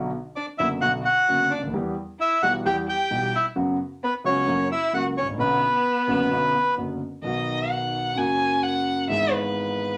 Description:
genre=tango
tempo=131 BPM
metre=4/4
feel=rubato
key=B minor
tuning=A4 = 439 Hz
part: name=warm concert grand piano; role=accompaniment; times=0.0-10.0 s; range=F#1 to G#4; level=-29 LUFS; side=equal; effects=none
part: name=bandoneon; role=melody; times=0.4-6.7 s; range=B4 to G5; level=-24 LUFS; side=equal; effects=none
part: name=warm violin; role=second line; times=0.4-10.0 s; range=B3 to G#5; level=-30 LUFS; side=equal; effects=none
room=wet studio ambience, RT60 0.5 s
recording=none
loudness=-24 LUFS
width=mono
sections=0.0-7.3 A section; 7.3-10.0 B section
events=violin solo 7.3-10.0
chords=0.0 Bm; 1.7 Em; 3.6 F#sus4; 4.5 F#; 5.4 Bmadd9; 7.3 B; 8.2 F#; 9.1 E/G#

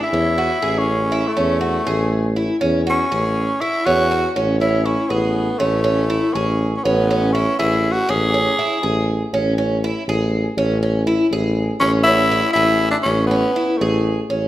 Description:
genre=progressive instrumental, band music in an uneven meter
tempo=242 BPM (eighths)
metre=5/8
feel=straight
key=A major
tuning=A4 = 441 Hz
part: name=growling tenor saxophone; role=melody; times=0.0-9.1, 11.8-14.2 s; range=A3 to G#4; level=-19 LUFS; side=equal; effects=none
part: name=picked twelve-string acoustic guitar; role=arpeggios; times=0.0-14.5 s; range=C#4 to G#4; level=-22 LUFS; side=right 2 dB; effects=none
part: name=warm tuba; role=bass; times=0.1-14.5 s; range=A1 to E2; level=-20 LUFS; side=equal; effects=none
room=wet recital hall reverb, RT60 1.6 s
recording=none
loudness=-16 LUFS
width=side -14 dB against mid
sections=0.0-4.4 A section; 4.4-14.3 B section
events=tenor saxophone solo 0.0-4.4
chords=0.0 Amaj7

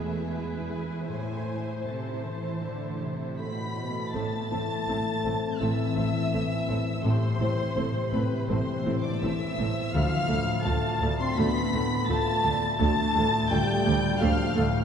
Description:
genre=cinematic, emotional film score for orchestra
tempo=83 BPM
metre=4/4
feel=rubato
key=A minor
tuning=A4 = 442 Hz
part: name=warm studio violin section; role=melody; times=0.0-14.8 s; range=E5 to C7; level=-36 LUFS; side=left 2 dB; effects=none
part: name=rich studio violin section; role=second line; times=0.0-14.8 s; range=E4 to C6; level=-34 LUFS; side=left 2 dB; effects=none
part: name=warm grand piano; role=accompaniment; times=0.0-14.8 s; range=D2 to D5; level=-32 LUFS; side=left 1 dB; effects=none
part: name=warm studio viola section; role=accompaniment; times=0.0-14.6 s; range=A3 to C5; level=-35 LUFS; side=right 2 dB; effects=none
part: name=concert harp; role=arpeggios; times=0.0-14.8 s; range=A2 to E5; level=-35 LUFS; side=left 4 dB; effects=none
part: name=rich studio cello section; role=bass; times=0.0-14.6 s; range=D2 to E3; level=-34 LUFS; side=right 3 dB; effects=none
part: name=bright large flute ensemble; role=second line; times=3.4-14.8 s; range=B4 to C6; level=-35 LUFS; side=equal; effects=none
part: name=mellow French horn section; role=sustained chords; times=3.4-14.8 s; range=B2 to C4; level=-32 LUFS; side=left 3 dB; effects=none
part: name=warm studio double bass section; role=bass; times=4.1-14.7 s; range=A1 to D2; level=-32 LUFS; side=right 3 dB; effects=none
room=wet church reverb, RT60 3.3 s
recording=dark, warm production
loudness=-25 LUFS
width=side -7 dB against mid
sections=0.0-4.2 A section; 4.2-14.8 A section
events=none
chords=0.0 E; 1.1 Am; 9.9 Dm

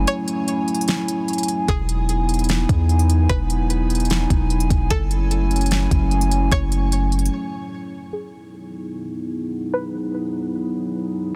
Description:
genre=hip hop, atmospheric cloud-rap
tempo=149 BPM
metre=4/4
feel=half-time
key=E major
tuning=A4 = 440 Hz
part: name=dark analog pad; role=sustained chords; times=0.0-11.4 s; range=F#3 to G#5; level=-26 LUFS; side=equal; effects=subtle chorus, sidechain pumping, low-pass filter
part: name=long sustained 808-style bass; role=bass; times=0.0-7.3 s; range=E1 to E2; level=-22 LUFS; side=equal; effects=none
part: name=string-like resonator pluck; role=melody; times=0.1-10.5 s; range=G#4 to C#5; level=-31 LUFS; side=equal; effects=chorus, low-pass filter, delay
part: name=smooth R&B drum kit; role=drums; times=0.1-7.3 s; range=hi-hat, kick drum, snare drum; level=-25 LUFS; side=equal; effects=none
room=digital ambience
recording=dense, heavily limited modern master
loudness=-21 LUFS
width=mono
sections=0.0-8.1 A section; 8.1-11.4 B section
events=break 0.1-1.7, 7.3-8.1; filter sweep 8.1-11.4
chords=0.0 F#m9; 1.7 Emaj9; 4.9 F#m9; 8.1 Emaj9

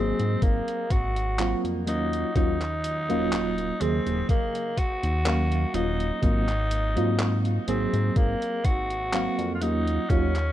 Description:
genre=vaporwave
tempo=62 BPM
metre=4/4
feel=swing 53% on 16ths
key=Eb dorian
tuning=A4 = 441 Hz
part: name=raspy tenor saxophone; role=melody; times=0.0-10.5 s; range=Bb3 to Gb4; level=-29 LUFS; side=equal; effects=tape echo
part: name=mellow FM electric piano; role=accompaniment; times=0.0-10.3 s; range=Db3 to F5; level=-28 LUFS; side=right 1 dB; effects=tremolo, analog chorus, dub echo
part: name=chorused synth bass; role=bass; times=0.0-10.5 s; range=Eb1 to Ab2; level=-27 LUFS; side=equal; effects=none
part: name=detuned 8-bit digital drum machine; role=drums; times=0.2-10.5 s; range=handclaps, hi-hat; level=-34 LUFS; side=equal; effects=studio ambience
part: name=electronic kick drum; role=drums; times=0.4-10.3 s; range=none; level=-24 LUFS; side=equal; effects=studio ambience
room=light reverb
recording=echo-heavy mix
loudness=-23 LUFS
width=side -12 dB against mid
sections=0.0-10.5 A section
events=none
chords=0.0 Ab13; 1.9 Ebm7; 6.2 Ab13; 9.6 Ebm7

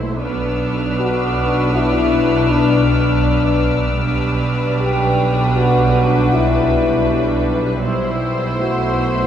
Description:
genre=cinematic, suspense film score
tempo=79 BPM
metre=5/4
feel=straight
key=B phrygian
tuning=A4 = 441 Hz
part: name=rich studio violin section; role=melody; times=0.0-9.3 s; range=B4 to C5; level=-24 LUFS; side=left 3 dB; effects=none
part: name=warm studio viola section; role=accompaniment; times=0.0-9.3 s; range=G3 to E4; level=-22 LUFS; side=right 2 dB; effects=none
part: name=warm studio cello section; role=bass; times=0.0-9.3 s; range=B2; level=-24 LUFS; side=right 3 dB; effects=none
part: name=warm studio double bass section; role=bass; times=0.0-9.3 s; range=B1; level=-21 LUFS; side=right 2 dB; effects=none
part: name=swarming drone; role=drone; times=0.0-9.3 s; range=B1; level=-24 LUFS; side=equal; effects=built-in reverb
part: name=warm studio violin section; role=texture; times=0.2-9.3 s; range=C6 to E#6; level=-28 LUFS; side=left 2 dB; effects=none
part: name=mellow French horn section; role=sustained chords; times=1.0-9.3 s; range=D4 to G4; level=-19 LUFS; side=left 4 dB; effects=none
room=wet scoring stage reverb, RT60 1.7 s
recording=heard from further back in the room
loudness=-14 LUFS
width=side -9 dB against mid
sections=0.0-9.3 A section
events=none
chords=0.2 Bm; 4.0 G/B; 7.8 Am/B

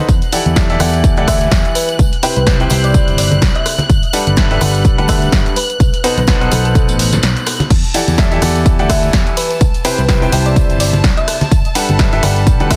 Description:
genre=piano house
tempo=126 BPM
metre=4/4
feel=swing 57% on 16ths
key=E minor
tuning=A4 = 440 Hz
part: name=warm studio string section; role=sustained chords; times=0.0-12.8 s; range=A5 to F#6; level=-28 LUFS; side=equal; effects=vintage 12-bit sampler grit, sidechain pumping
part: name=clear grand piano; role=riff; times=0.0-12.8 s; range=B2 to G5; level=-20 LUFS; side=equal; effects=sidechain pumping, digital delay
part: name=fingered electric bass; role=bass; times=0.1-12.8 s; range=G1 to E2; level=-19 LUFS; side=equal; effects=sidechain pumping
part: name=dusty soul sampler-style drum kit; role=drums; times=0.1-12.8 s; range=hi-hat, snare drum, tambourine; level=-30 LUFS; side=equal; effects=none
part: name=electronic kick drum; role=drums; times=0.1-12.8 s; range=none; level=-16 LUFS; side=equal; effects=none
part: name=punchy analog drum machine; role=drums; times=0.1-12.8 s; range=crash cymbal, hi-hat, ride cymbal, rim click, snare drum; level=-22 LUFS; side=equal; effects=none
part: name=tambourine and congas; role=percussion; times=0.1-12.8 s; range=none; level=-26 LUFS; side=equal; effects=none
part: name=thumb-piano-like synth pluck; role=melody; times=1.3-12.8 s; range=A4 to E5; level=-24 LUFS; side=equal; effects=ensemble chorus, cassette tape, digital delay
room=little or no reverb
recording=dense, heavily limited modern master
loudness=-13 LUFS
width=mono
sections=0.0-12.8 A section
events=break 7.2-7.7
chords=0.1 Em11; 2.0 Cmaj7; 3.9 Gmaj9; 5.6 B7b9; 7.7 Em11; 9.6 Cmaj7; 11.5 Gmaj9

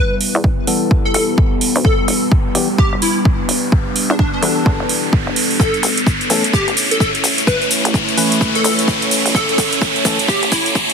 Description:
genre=bass house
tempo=128 BPM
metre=4/4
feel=swing 61% on 16ths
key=E dorian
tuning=A4 = 441 Hz
part: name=plucky unison lead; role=melody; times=0.0-10.7 s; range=D4 to B4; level=-21 LUFS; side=left 1 dB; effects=ensemble chorus, digital delay
part: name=deep dark ambient pad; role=sustained chords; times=0.1-10.9 s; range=G3 to C#5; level=-22 LUFS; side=equal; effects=chorus, built-in reverb, sidechain pumping
part: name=hollow knocking FM bass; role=bass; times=0.0-10.7 s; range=E1 to E2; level=-21 LUFS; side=equal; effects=tube saturation, sidechain pumping, high-pass filter
part: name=riser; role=sound effects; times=0.2-10.9 s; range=none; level=-20 LUFS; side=equal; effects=none
part: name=electronic hi-hat and cabasa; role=drums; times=0.2-10.9 s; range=none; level=-19 LUFS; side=right 2 dB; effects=soft clipping on snare
part: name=electronic kick drum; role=drums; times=0.4-10.9 s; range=none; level=-16 LUFS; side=equal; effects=none
part: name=percussive organ stab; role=stabs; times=0.7-10.2 s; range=E3 to B4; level=-22 LUFS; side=left 3 dB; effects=chorus, sidechain pumping, digital delay
room=moderate lush hall reverb, RT60 2.2 s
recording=dense, heavily limited modern master, high-pass filter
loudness=-13 LUFS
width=side -6 dB against mid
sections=0.0-10.9 A section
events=build-up 0.0-10.9; filter sweep on synth stab 0.0-10.9; filter sweep 0.0-10.9; riser 0.2-10.9; drum fill 5.6-10.9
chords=0.0 Em; 5.6 A

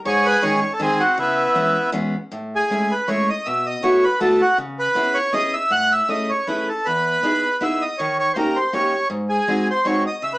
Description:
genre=musette waltz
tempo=160 BPM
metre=3/4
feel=swing 54% on 8ths, rubato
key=C# minor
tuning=A4 = 439 Hz
part: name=accordion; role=melody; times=0.1-10.4 s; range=B3 to F#5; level=-18 LUFS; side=right 1 dB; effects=none
part: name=picked steel-string acoustic guitar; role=accompaniment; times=0.1-10.4 s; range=E2 to G#4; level=-22 LUFS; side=equal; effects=none
room=moderate studio reverb, RT60 0.6 s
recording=small speaker sound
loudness=-17 LUFS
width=side -20 dB against mid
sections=0.0-2.3 A section; 2.3-10.4 B section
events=none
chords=0.1 G#sus4; 0.8 G#; 1.2 C#m7; 2.3 Amaj7; 3.5 B7sus4; 4.6 C#m7; 5.7 Amaj7; 6.9 Emaj7; 8.0 D#7; 9.1 G#7

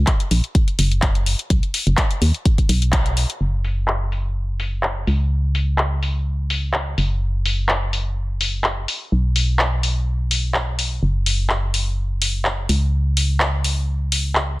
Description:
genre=piano house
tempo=126 BPM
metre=4/4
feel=swing 54% on 16ths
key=unclear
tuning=A4 = 440 Hz
part: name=organ-like FM bass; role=bass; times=0.0-14.6 s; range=F#1 to D#2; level=-20 LUFS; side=equal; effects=sidechain pumping
part: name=electronic kick drum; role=drums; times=0.1-3.0 s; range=none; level=-18 LUFS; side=equal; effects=none
part: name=house drum kit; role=drums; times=0.1-14.5 s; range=handclaps, hi-hat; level=-22 LUFS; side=left 1 dB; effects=low-pass filter on hats, low-pass filter on snare
room=little or no reverb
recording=dense, heavily limited modern master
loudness=-18 LUFS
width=side -20 dB against mid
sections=0.0-3.4 A section; 3.4-14.6 B section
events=band accent 2.9; filter sweep on drum 3.4-14.6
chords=none

